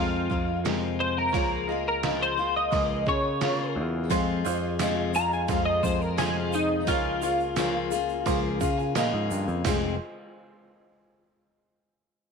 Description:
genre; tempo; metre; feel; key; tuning
folk rock and heartland rock; 87 BPM; 4/4; straight; F minor; A4 = 440 Hz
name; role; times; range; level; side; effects
twelve-string electric guitar; melody; 0.0-8.9 s; Eb4 to Bb5; -27 LUFS; equal; analog chorus
bright upright piano; accompaniment; 0.0-10.0 s; F4 to C6; -34 LUFS; right 13 dB; none
picked steel-string acoustic guitar; accompaniment; 0.0-9.9 s; F2 to Ab4; -30 LUFS; left 11 dB; none
picked electric bass; bass; 0.0-10.0 s; F1 to Db3; -31 LUFS; right 1 dB; none
trip hop sampler-style drum kit; drums; 0.3-9.8 s; hi-hat, kick drum, snare drum; -31 LUFS; right 4 dB; none
mellow tonewheel organ; sustained chords; 4.1-10.0 s; F3 to C5; -40 LUFS; left 10 dB; none
tube shaker; percussion; 4.1-10.0 s; none; -43 LUFS; right 20 dB; none
room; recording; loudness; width
moderate spring reverb, RT60 2.7 s; 1960s-style stereo with parts hard left and right; -24 LUFS; side -5 dB against mid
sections
0.0-9.7 A section; 9.7-12.3 B section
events
clean electric guitar solo 0.0-9.7; upright piano fill 8.3-9.7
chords
0.0 Fm; 1.3 Db6; 4.1 Fm; 6.9 Db6; 9.7 Fm

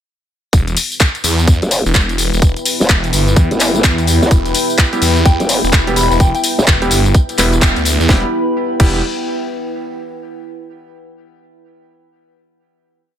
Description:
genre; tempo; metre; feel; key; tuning
bass house; 127 BPM; 4/4; swing 62% on 16ths; E minor; A4 = 440 Hz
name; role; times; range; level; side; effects
dark analog pad; sustained chords; 0.5-8.3 s; B3 to B5; -25 LUFS; right 2 dB; lush chorus, sidechain pumping
phased detuned saw bass; bass; 0.5-9.0 s; E1 to E2; -16 LUFS; equal; phaser, sidechain pumping
electronic kick drum; drums; 0.5-8.9 s; none; -10 LUFS; equal; none
garage drum kit; drums; 0.5-8.9 s; crash cymbal, handclaps, hi-hat, snare drum, tambourine; -17 LUFS; left 2 dB; none
deep dark ambient pad; texture; 1.3-9.9 s; E4 to G5; -22 LUFS; left 2 dB; chorus, built-in reverb, sidechain pumping
growl bass; bass; 1.6-6.7 s; E1 to D2; -14 LUFS; equal; chorus, tube saturation, sidechain pumping
clear grand piano; stabs; 4.9-9.0 s; G3 to B4; -21 LUFS; right 1 dB; sidechain pumping, ping-pong delay
soft synth bell; melody; 5.3-6.4 s; G5 to B5; -22 LUFS; left 2 dB; chorus, phaser, ping-pong delay
room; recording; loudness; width
light reverb; none; -11 LUFS; side -10 dB against mid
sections
0.5-8.1 drop; 8.1-10.0 final chord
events
drop 0.5-8.1; band accent 7.6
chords
0.5 Em

